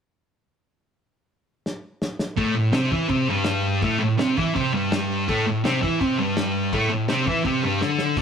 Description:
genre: garage rock duo or trio.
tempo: 166 BPM.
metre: 4/4.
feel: straight.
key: unclear.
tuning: A4 = 440 Hz.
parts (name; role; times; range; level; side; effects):
cloth-damped thuddy drum kit; drums; 1.7-8.2 s; crash cymbal, kick drum, snare drum, splash cymbal; -29 LUFS; left 1 dB; none.
thick fuzz guitar; riff; 2.4-8.2 s; G2 to E4; -20 LUFS; equal; distortion.
room: moderate stone room reverb, RT60 0.9 s.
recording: rough rehearsal-room recording.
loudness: -20 LUFS.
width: side -7 dB against mid.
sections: 0.9-2.4 A section; 2.4-8.2 B section.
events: drum fill 1.7-2.4, 7.8-8.2.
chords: 0.9 N.C.; 2.4 A5.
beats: | 0.93 1.29 1.66 2.02 | 2.38 2.74 3.10 3.46 | 3.83 4.19 4.55 4.91 | 5.27 5.64 6.00 6.36 | 6.72 7.09 7.45 7.81 | 8.17.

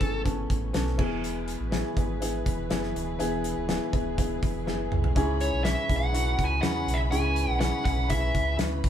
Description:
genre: piano-driven pop.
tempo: 122 BPM.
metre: 4/4.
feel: straight.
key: unclear.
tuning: A4 = 440 Hz.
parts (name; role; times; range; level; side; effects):
dark smooth lead guitar; melody; 0.0-0.2, 5.4-8.6 s; A4 to G#5; -29 LUFS; right 1 dB; overdrive.
clear upright piano; accompaniment; 0.0-8.9 s; G#2 to B4; -30 LUFS; left 2 dB; none.
warm studio string section; sustained chords; 0.0-8.9 s; C#3 to B4; -39 LUFS; right 2 dB; none.
sub bass with octave; bass; 0.0-8.9 s; D1 to E2; -30 LUFS; equal; none.
loose indie drum kit; drums; 0.0-8.9 s; crash cymbal, hi-hat, kick drum, snare drum, toms; -29 LUFS; equal; none.
warm studio violin section; second line; 5.2-8.9 s; B4 to B5; -37 LUFS; left 1 dB; none.
room: moderate studio ambience, RT60 0.5 s.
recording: band playing live in one room.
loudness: -24 LUFS.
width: side -10 dB against mid.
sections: 0.0-8.9 A section.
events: drum fill 4.7-5.2.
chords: 0.0 Aadd9; 1.0 E; 5.2 C#m.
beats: 0.26 0.74 | 1.24 1.73 2.22 2.71 | 3.20 3.69 4.18 4.67 | 5.16 5.65 6.14 6.63 | 7.12 7.61 8.10 8.59.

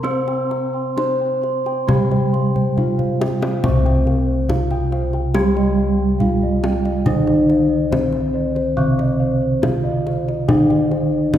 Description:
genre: Javanese gamelan.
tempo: 70 BPM.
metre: 4/4.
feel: straight.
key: unclear.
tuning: A4 = 441 Hz.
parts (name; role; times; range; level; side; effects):
gamelan-type bronze metallophone; melody; 0.0-11.4 s; C4 to C5; -22 LUFS; left 1 dB; none.
gamelan-type bronze metallophone; accompaniment; 0.0-11.4 s; C3 to C4; -22 LUFS; right 2 dB; none.
gamelan-type bossed gongs; arpeggios; 0.0-11.4 s; C5 to C6; -28 LUFS; left 6 dB; none.
gamelan-type bronze metallophone; arpeggios; 0.0-11.4 s; Bb4-25c to C6; -28 LUFS; right 3 dB; none.
gamelan-type bossed gongs; bass; 0.0-11.4 s; C2 to C5; -21 LUFS; equal; none.
kendang; percussion; 0.0-11.4 s; none; -24 LUFS; left 1 dB; none.
room: wet concert hall reverb, RT60 2.2 s.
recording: heard from further back in the room.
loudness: -16 LUFS.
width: side -11 dB against mid.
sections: 0.0-3.6 A section; 3.6-11.4 B section.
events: drum fill 2.5-3.6.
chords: none.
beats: | 0.04 0.97 1.88 2.77 | 3.63 4.49 5.35 6.20 | 7.06 7.92 8.78 9.63 | 10.49 11.34.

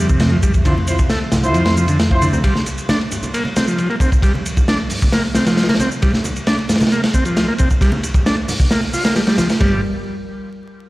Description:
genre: breakbeat, breaks.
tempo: 134 BPM.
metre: 4/4.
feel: straight.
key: G dorian.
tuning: A4 = 441 Hz.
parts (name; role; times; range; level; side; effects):
warbly tape-like pad; sustained chords; 0.0-9.8 s; D3 to E5; -30 LUFS; equal; none.
combo organ; riff; 0.0-9.8 s; C3 to F4; -20 LUFS; equal; low-pass filter, dub echo.
picked electric bass; bass; 0.0-2.4, 9.6-9.8 s; G1 to F2; -19 LUFS; equal; none.
crunchy breakbeat drum kit; drums; 0.1-9.7 s; hi-hat, kick drum, ride cymbal, snare drum; -16 LUFS; equal; none.
shaker; drums; 0.1-9.6 s; none; -32 LUFS; right 3 dB; none.
congas; percussion; 0.4-9.5 s; none; -27 LUFS; right 1 dB; none.
dark brass ensemble; stabs; 0.7-2.3 s; E4 to C5; -22 LUFS; equal; vintage 12-bit sampler grit, dub echo.
room: small room ambience.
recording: played on a big sound system in a bare room, large studio reverb, vinyl crackle.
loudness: -14 LUFS.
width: side -19 dB against mid.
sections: 0.0-9.6 A section; 9.6-10.9 B section.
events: none.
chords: 0.0 Dm9; 2.4 Gm7.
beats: 0.20 | 0.65 1.10 1.55 1.99 | 2.44 2.89 3.34 3.79 | 4.23 4.68 5.13 5.58 | 6.02 6.47 6.92 7.37 | 7.82 8.26 8.71 9.16 | 9.61.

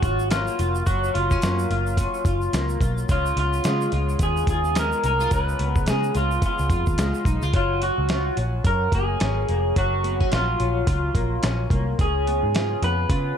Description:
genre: indie pop, bedroom pop.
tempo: 108 BPM.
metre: 4/4.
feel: swing 60% on 16ths.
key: F# major.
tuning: A4 = 440 Hz.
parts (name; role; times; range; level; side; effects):
electric guitar through a small old amp; melody; 0.0-13.3 s; E#4 to B4; -25 LUFS; equal; wide subtle chorus, dub echo.
flamenco guitar; accompaniment; 0.0-13.4 s; C#3 to E#4; -29 LUFS; left 4 dB; analog chorus, vibrato effect.
vintage muted picked electric bass; bass; 0.0-13.3 s; E#1 to C#3; -25 LUFS; equal; none.
dusty soul sampler-style drum kit; drums; 0.0-13.3 s; hi-hat, kick drum, snare drum; -24 LUFS; equal; none.
tube shaker; percussion; 0.0-7.5 s; none; -43 LUFS; right 6 dB; none.
room: light reverb, digital ambience.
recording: echo-heavy mix.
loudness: -20 LUFS.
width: side -8 dB against mid.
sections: 0.0-7.5 A section; 7.5-13.4 B section.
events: none.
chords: 0.0 F#maj7; 3.1 C#7; 7.5 F#maj7; 12.0 C#7.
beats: 0.31 | 0.86 1.42 1.98 2.53 | 3.09 3.65 4.20 4.76 | 5.32 5.87 6.43 6.98 | 7.54 8.10 8.65 9.21 | 9.76 10.32 10.88 11.43 | 11.99 12.54 13.10.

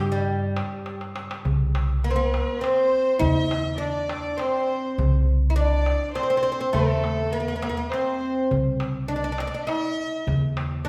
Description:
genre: Arabic maqam ensemble.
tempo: 102 BPM.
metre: 3/4.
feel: straight.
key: C maqam rast.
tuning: A4 = 440 Hz.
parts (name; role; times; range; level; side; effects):
oud; melody; 0.0-10.9 s; G3 to G4; -28 LUFS; equal; none.
upright bass; bass; 0.0-10.9 s; C2 to G2; -28 LUFS; equal; none.
dark double bass; drone; 0.0-1.5 s; G2; -36 LUFS; equal; none.
darbuka; percussion; 0.3-10.7 s; none; -31 LUFS; equal; none.
rich chamber violin section; second line; 2.0-10.9 s; A4 to E5-50c; -32 LUFS; equal; none.
room: wet recital hall reverb, RT60 1.4 s.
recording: recorded in a church or concert hall.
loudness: -24 LUFS.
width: mono.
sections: 0.0-1.5 A section; 1.5-10.9 B section.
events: drum fill 0.9-1.5.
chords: none.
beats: 0.28 0.87 | 1.46 2.04 2.63 | 3.22 3.81 4.39 | 4.98 5.57 6.16 | 6.75 7.33 7.92 | 8.51 9.09 9.68 | 10.27 10.86.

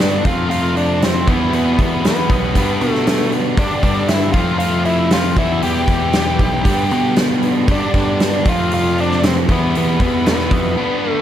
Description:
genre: classic rock.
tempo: 117 BPM.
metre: 4/4.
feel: straight.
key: unclear.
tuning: A4 = 440 Hz.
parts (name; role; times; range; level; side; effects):
octave-fuzz lead guitar; melody; 0.0-11.2 s; B3 to G4; -20 LUFS; left 1 dB; distortion.
biting overdriven guitar; riff; 0.0-11.2 s; E2 to G4; -23 LUFS; right 12 dB; none.
cranked stack guitar; riff; 0.0-11.2 s; E2 to G4; -22 LUFS; left 9 dB; overdrive.
fuzz picked electric bass; bass; 0.0-10.7 s; B1 to B2; -20 LUFS; equal; overdrive.
huge arena drum kit; drums; 0.0-10.6 s; hi-hat, kick drum, snare drum; -19 LUFS; equal; none.
room: small room ambience.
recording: none.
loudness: -14 LUFS.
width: side -10 dB against mid.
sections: 0.0-11.2 A section.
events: break 10.8-11.2.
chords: 0.3 F; 1.3 Em; 2.6 G; 4.4 F; 5.4 Em; 6.7 G; 8.5 F; 9.5 Em.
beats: 0.00 0.51 1.02 | 1.53 2.05 2.56 3.07 | 3.58 4.09 4.61 5.12 | 5.63 6.15 6.66 7.17 | 7.69 8.20 8.71 9.23 | 9.74 10.26 10.77.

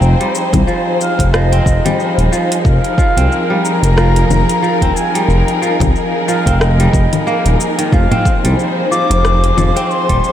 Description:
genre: organic downtempo.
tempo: 91 BPM.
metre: 4/4.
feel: swing 57% on 16ths.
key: F minor.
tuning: A4 = 440 Hz.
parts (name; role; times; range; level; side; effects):
bright bansuri; melody; 0.0-10.3 s; Eb5 to D6; -20 LUFS; left 2 dB; ping-pong delay.
dark studio string section; sustained chords; 0.0-10.3 s; F3 to C5; -18 LUFS; left 1 dB; sidechain pumping.
kora; arpeggios; 0.0-10.3 s; Eb3 to C4; -19 LUFS; right 1 dB; diffuse ambient delay.
smooth gliding synth bass; bass; 0.0-10.2 s; Eb1 to C2; -13 LUFS; equal; sidechain pumping.
deep house drum kit; drums; 0.0-10.3 s; congas, hi-hat, rim click, shaker; -22 LUFS; left 3 dB; overdrive.
electronic kick drum; drums; 0.5-10.2 s; none; -15 LUFS; equal; overdrive.
frame drum; percussion; 8.1-8.2 s; none; -21 LUFS; right 3 dB; none.
room: moderate huge ambient reverb, RT60 8.1 s.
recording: dreamy mix soaked in reverb.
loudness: -11 LUFS.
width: side -10 dB against mid.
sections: 0.0-10.3 A section.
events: none.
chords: 0.0 Fm7.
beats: | 0.01 0.67 1.33 1.99 | 2.65 3.31 3.97 4.63 | 5.29 5.95 6.61 7.27 | 7.93 8.59 9.24 9.90.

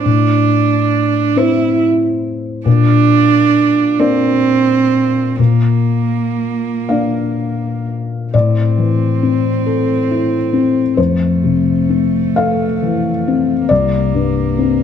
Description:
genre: neoclassical piano and strings.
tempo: 39-47 BPM (dotted quarters).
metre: 6/8.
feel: rubato.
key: unclear.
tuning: A4 = 442 Hz.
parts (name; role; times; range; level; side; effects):
warm cello; second line; 0.0-14.8 s; A3 to E4; -16 LUFS; right 6 dB; none.
felt-muted upright piano; accompaniment; 0.0-14.8 s; C2 to F5; -14 LUFS; left 4 dB; none.
room: moderate large studio reverb, RT60 1.3 s.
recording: dark, warm production.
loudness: -12 LUFS.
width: side -8 dB against mid.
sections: 0.0-8.3 A section; 8.3-14.8 B section.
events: none.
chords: 0.0 Am; 2.7 Bb; 8.3 Am; 11.0 Fmaj7; 13.7 C7(no3).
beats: | 0.06 1.37 | 2.66 4.00 | 5.38 6.88 | 8.33 9.66 | 10.98 12.37 | 13.70.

